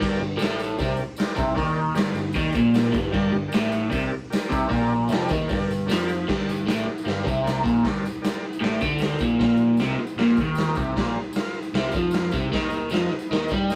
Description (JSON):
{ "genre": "garage rock duo or trio", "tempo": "153 BPM", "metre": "4/4", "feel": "straight", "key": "G minor", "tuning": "A4 = 442 Hz", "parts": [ { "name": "combo organ", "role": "sustained chords", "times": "0.0-13.8 s", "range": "Eb4 to G5", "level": "-35 LUFS", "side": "equal", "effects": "none" }, { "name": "crunchy overdriven guitar", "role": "riff", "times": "0.0-13.8 s", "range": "F2 to G3", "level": "-25 LUFS", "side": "equal", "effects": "phaser" }, { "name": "picked electric bass", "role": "bass", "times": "0.0-13.8 s", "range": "F1 to G2", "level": "-34 LUFS", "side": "equal", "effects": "none" }, { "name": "raw garage drum kit", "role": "drums", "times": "0.0-13.8 s", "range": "crash cymbal, hi-hat, kick drum, snare drum, splash cymbal", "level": "-30 LUFS", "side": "equal", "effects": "none" }, { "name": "tambourine", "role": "percussion", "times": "0.2-13.8 s", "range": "none", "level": "-50 LUFS", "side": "equal", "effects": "none" } ], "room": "moderate studio reverb, RT60 0.5 s", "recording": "rough rehearsal-room recording", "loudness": "-24 LUFS", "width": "mono", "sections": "0.0-6.3 A section; 6.3-13.8 B section", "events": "none", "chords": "0.0 Gm; 9.4 Bb5; 12.5 Eb5" }